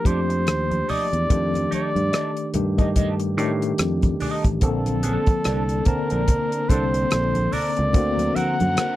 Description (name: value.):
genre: lush 1970s-style soul.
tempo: 72 BPM.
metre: 4/4.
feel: swing 58% on 16ths.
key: unclear.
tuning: A4 = 440 Hz.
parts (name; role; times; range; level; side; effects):
warm flugelhorn; melody; 0.0-9.0 s; A4 to F#5; -25 LUFS; equal; none.
tine electric piano; accompaniment; 0.0-9.0 s; D3 to A5; -25 LUFS; left 2 dB; overdrive, medium stereo tremolo.
electric guitar through a small old amp; riff; 0.1-9.0 s; C4 to Eb5; -31 LUFS; right 4 dB; wah.
fingered electric bass; bass; 0.1-8.8 s; A1 to A2; -24 LUFS; equal; none.
damped 70s drum kit; drums; 0.1-9.0 s; hi-hat, kick drum, rim click; -21 LUFS; equal; none.
congas; percussion; 0.1-9.0 s; none; -31 LUFS; right 2 dB; none.
warm studio string section; sustained chords; 4.6-9.0 s; D3 to Bb4; -34 LUFS; right 1 dB; none.
room: little or no reverb.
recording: dry, close 1970s-style studio recording.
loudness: -19 LUFS.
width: side -15 dB against mid.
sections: 0.0-9.0 A section.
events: none.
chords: 0.0 Ebmaj9#11; 1.3 F13; 4.6 Bbmaj9; 7.9 D7b13.